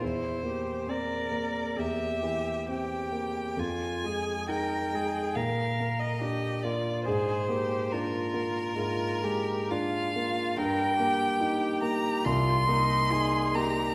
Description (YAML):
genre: classical, slow romantic movement for piano trio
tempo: 68 BPM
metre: 4/4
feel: uneven beats, rubato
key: unclear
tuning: A4 = 440 Hz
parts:
  - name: clear violin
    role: melody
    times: 0.0-13.9 s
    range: Bb4 to C6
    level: -33 LUFS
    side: equal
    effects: none
  - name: rich cello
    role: second line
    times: 0.0-13.9 s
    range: Eb4 to Bb4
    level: -36 LUFS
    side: equal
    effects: none
  - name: warm grand piano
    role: accompaniment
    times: 0.0-13.9 s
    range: C2 to Eb4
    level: -33 LUFS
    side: equal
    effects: none
room: wet scoring stage reverb, RT60 1.5 s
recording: none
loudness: -29 LUFS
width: mono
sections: 0.0-13.9 A section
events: none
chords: 0.0 C7/E; 3.6 Fm7; 5.4 Bb; 7.1 Bb7/Ab; 10.6 Eb/G; 12.3 Cm7